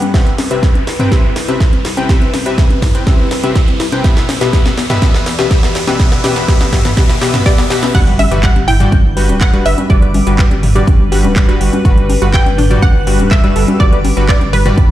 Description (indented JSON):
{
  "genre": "progressive house",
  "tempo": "123 BPM",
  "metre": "4/4",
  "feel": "straight",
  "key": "G major",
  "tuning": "A4 = 439 Hz",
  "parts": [
    { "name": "evolving wavetable pad", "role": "sustained chords", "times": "0.0-14.9 s", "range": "E2 to E5", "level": "-24 LUFS", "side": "left 2 dB", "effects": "phaser, built-in reverb, sidechain pumping" },
    { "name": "tight sequenced synth", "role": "arpeggios", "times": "0.0-14.8 s", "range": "G3 to B4", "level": "-20 LUFS", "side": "left 3 dB", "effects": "chorus, sidechain pumping, tape echo" },
    { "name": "supersaw stab", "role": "stabs", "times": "0.0-14.8 s", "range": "G2 to G5", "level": "-18 LUFS", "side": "left 1 dB", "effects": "sidechain pumping, tape echo" },
    { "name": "house drum kit", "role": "drums", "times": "0.0-14.9 s", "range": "crash cymbal, handclaps, hi-hat, snare drum", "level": "-22 LUFS", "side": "right 1 dB", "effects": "high-pass filter on snare, sidechain pumping on hats, high-pass filter on hats, sidechain pumping on cymbals, high-pass filter on cymbals, high-pass filter on room" },
    { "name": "electronic congas and toms", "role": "percussion", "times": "0.0-14.9 s", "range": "none", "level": "-21 LUFS", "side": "left 1 dB", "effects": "overdrive, sidechain pumping on perc, sidechain pumping on toms" },
    { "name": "riser and impact", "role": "sound effects", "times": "0.0-9.9 s", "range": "none", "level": "-24 LUFS", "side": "right 1 dB", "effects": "none" },
    { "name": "electronic kick drum", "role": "drums", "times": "0.1-14.9 s", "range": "none", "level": "-11 LUFS", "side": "right 1 dB", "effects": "none" },
    { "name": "wide unison pluck", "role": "melody", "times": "7.5-14.9 s", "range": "B4 to G5", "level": "-20 LUFS", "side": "right 1 dB", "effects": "dub echo" },
    { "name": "airy dreamy lead", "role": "second line", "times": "7.9-14.9 s", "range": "B5 to G6", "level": "-26 LUFS", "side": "right 1 dB", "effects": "chorus, sidechain pumping, tape echo" },
    { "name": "saturated sub bass", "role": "bass", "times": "7.9-14.9 s", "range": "D1 to G1", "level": "-15 LUFS", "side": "right 1 dB", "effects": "tube saturation, sidechain pumping" }
  ],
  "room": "light reverb",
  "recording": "played on a big sound system in a bare room, stone room reverb",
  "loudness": "-9 LUFS",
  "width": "side -13 dB against mid",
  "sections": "0.0-7.9 A section; 7.9-14.9 B section",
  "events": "build-up 0.0-7.9; drum fill 0.0-7.9; riser 0.0-7.9; filter sweep on synth arpeggio sound 0.0-7.9; filter sweep on ambient pad 0.0-7.9; drop 7.9-14.9; impact 7.9-9.9",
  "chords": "0.1 Cmaj7; 4.0 Em7; 7.9 Gmaj7"
}